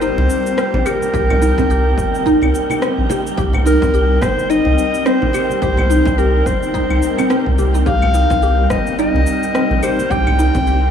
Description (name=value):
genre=organic downtempo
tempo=107 BPM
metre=4/4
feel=swing 58% on 16ths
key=C minor pentatonic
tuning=A4 = 438 Hz
part: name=warm clarinet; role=melody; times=0.0-10.9 s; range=Bb4 to G5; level=-20 LUFS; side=left 2 dB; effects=digital delay
part: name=granular cloud pad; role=sustained chords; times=0.0-10.9 s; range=G3 to Eb5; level=-21 LUFS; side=left 1 dB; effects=built-in reverb, sidechain pumping
part: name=mallet-like synth pluck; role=arpeggios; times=0.0-10.8 s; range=C4 to G4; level=-20 LUFS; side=equal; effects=phaser, ensemble chorus, digital delay
part: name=round analog bass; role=bass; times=0.0-10.9 s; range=G1 to C2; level=-17 LUFS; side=equal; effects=sidechain pumping
part: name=electronic shaker, rim click and claves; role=drums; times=0.0-10.8 s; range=none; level=-26 LUFS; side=left 2 dB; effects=overdrive
part: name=wind-like tuned noise texture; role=texture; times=0.0-10.9 s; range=G5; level=-26 LUFS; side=right 3 dB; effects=built-in reverb
part: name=congas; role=percussion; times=0.2-10.6 s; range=none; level=-27 LUFS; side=right 2 dB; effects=none
part: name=electronic kick drum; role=drums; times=1.1-10.6 s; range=none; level=-23 LUFS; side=equal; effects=overdrive
room=light reverb, digital ambience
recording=small room ambience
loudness=-13 LUFS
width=side -8 dB against mid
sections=0.0-10.9 A section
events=none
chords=0.0 Cm